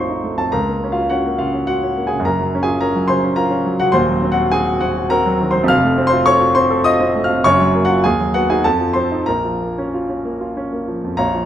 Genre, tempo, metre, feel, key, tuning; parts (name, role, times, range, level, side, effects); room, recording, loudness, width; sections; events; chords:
classical, romantic character piece for solo piano; 91-110 BPM; 3/4; rubato; Bb minor; A4 = 440 Hz
warm grand piano; solo; 0.0-11.5 s; Eb1 to F6; -14 LUFS; equal
moderate recital hall reverb, RT60 1.4 s; close, detailed microphones; -14 LUFS; side -10 dB against mid
0.0-11.2 A section
0.0 F7/Bb; 0.5 Bbm/Db; 2.3 Gbmaj7; 3.9 Cdim/Eb; 5.7 F; 7.4 Gbmaj7; 8.0 B/D#; 8.6 F7; 9.3 Bbm